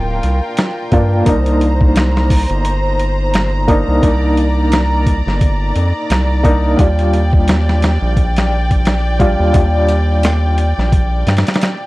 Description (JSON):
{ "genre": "trip hop", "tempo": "87 BPM", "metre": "4/4", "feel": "swing 57% on 16ths", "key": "unclear", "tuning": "A4 = 440 Hz", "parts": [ { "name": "felt-muted upright piano", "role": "accompaniment", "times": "0.0-11.9 s", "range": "G3 to F4", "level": "-18 LUFS", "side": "equal", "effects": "tremolo, vintage 12-bit sampler grit, tape echo" }, { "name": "clear studio violin section", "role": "sustained chords", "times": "0.0-11.9 s", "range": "F4 to Bb5", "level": "-22 LUFS", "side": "equal", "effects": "vintage 12-bit sampler grit" }, { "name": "round analog bass", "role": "bass", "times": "0.0-11.4 s", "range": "D1 to G2", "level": "-15 LUFS", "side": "equal", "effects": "none" }, { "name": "boom bap sampler-style drum kit", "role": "drums", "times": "0.2-11.8 s", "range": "hi-hat, kick drum, snare drum", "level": "-15 LUFS", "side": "equal", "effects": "none" } ], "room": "small room ambience", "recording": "dry, gritty hardware recording, vinyl crackle", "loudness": "-12 LUFS", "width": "side -19 dB against mid", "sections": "0.0-11.9 A section", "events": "none", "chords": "0.0 Gm7; 1.3 Cm7; 6.8 Ebmaj7" }